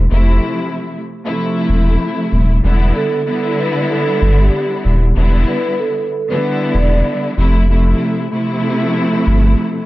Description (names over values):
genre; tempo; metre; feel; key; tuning
hip hop, boom-bap hip-hop; 95 BPM; 4/4; swing 62% on 16ths; E phrygian; A4 = 440 Hz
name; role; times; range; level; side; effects
saturated sub bass; bass; 0.0-9.6 s; D#1 to G1; -12 LUFS; equal; none
rich studio string section; accompaniment; 0.1-9.9 s; C3 to E4; -17 LUFS; equal; cassette tape, high-pass filter, low-pass filter
vibraphone with soft mallets; melody; 3.0-7.2 s; G4 to D5; -20 LUFS; right 2 dB; high-pass filter, low-pass filter, digital delay
room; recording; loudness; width
light reverb; dark, warm production; -13 LUFS; side -18 dB against mid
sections
0.0-9.9 A section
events
none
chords
0.0 Fmaj7; 2.6 Em7; 7.4 Fmaj7